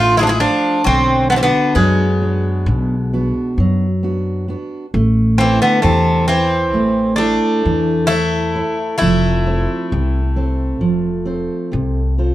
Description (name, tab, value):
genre	greek folk, Greek bouzouki band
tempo	132 BPM (eighths)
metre	9/8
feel	straight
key	unclear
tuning	A4 = 443 Hz
part	Greek bouzouki	melody	0.0-12.1 s	G#3 to F4	-18 LUFS	right 1 dB	none
part	Greek bouzouki	second line	0.0-12.1 s	C3 to B3	-22 LUFS	left 3 dB	none
part	fingerpicked steel-string acoustic guitar	accompaniment	0.0-12.3 s	B2 to C5	-19 LUFS	right 1 dB	none
part	upright bass	bass	0.0-12.3 s	F1 to F#2	-18 LUFS	equal	none
room	moderate studio reverb, RT60 0.5 s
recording	dark, warm production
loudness	-14 LUFS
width	side -14 dB against mid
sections	0.0-12.3 A section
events	none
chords	0.0 Dm; 0.9 Bm; 4.9 Am; 9.0 F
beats	0.40 | 0.85 1.31 1.76 2.21 2.67 3.12 3.58 4.03 4.48 | 4.93 5.39 5.84 6.30 6.75 7.20 7.66 8.11 8.56 | 9.02 9.47 9.92 10.38 10.83 11.28 11.73 12.19